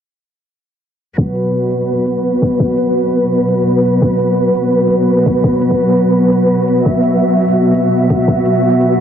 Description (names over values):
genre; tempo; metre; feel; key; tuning
half-time drum and bass; 169 BPM; 4/4; half-time; unclear; A4 = 440 Hz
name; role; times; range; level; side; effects
clear studio cello section; sustained chords; 1.2-9.0 s; B2 to E5; -12 LUFS; equal; sidechain pumping
electronic kick drum; drums; 1.2-8.4 s; none; -15 LUFS; left 1 dB; high-pass filter on kick
flickering grainy texture; texture; 1.5-9.0 s; B3 to B4; -18 LUFS; left 1 dB; built-in reverb
electronic hi-hat; drums; 1.4-8.9 s; none; -46 LUFS; left 1 dB; none
room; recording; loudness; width
moderate echo chamber reverb, RT60 2.2 s; low-pass filter; -11 LUFS; side -8 dB against mid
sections
1.2-9.0 A section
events
filter sweep 1.2-9.0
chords
1.2 B5